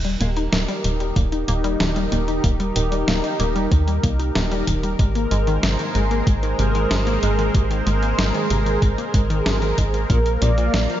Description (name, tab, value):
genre	synthwave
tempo	94 BPM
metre	4/4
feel	straight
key	Eb major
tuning	A4 = 440 Hz
part	lush unison pad	sustained chords	0.3-11.0 s	Ab3 to F5	-24 LUFS	equal	chorus, phaser, sidechain pumping
part	analog pluck	arpeggios	0.0-10.0 s	C3 to Eb4	-27 LUFS	left 2 dB	chorus, digital delay
part	tight sequencer bass	bass	0.0-10.9 s	Eb1 to Eb2	-22 LUFS	equal	tube saturation
part	clean 12-bit digital drum machine	drums	0.0-11.0 s	hi-hat, snare drum	-26 LUFS	equal	gated reverb
part	electronic kick drum	drums	1.2-10.2 s	none	-20 LUFS	equal	none
part	wide unison lead	melody	10.1-11.0 s	Bb4 to D5	-24 LUFS	right 1 dB	digital delay
part	semi-hollow electric guitar	riff	10.1-10.9 s	Bb2 to F3	-32 LUFS	left 3 dB	analog chorus, digital delay
room	light reverb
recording	nothing above 7.5 kHz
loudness	-18 LUFS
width	side -12 dB against mid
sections	0.0-11.0 A section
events	none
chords	0.0 Eb; 5.0 Abadd9; 10.1 Bb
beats	0.53 1.16 1.80 | 2.44 3.08 3.72 4.36 | 4.99 5.63 6.27 6.91 | 7.55 8.19 8.82 9.46 | 10.10 10.74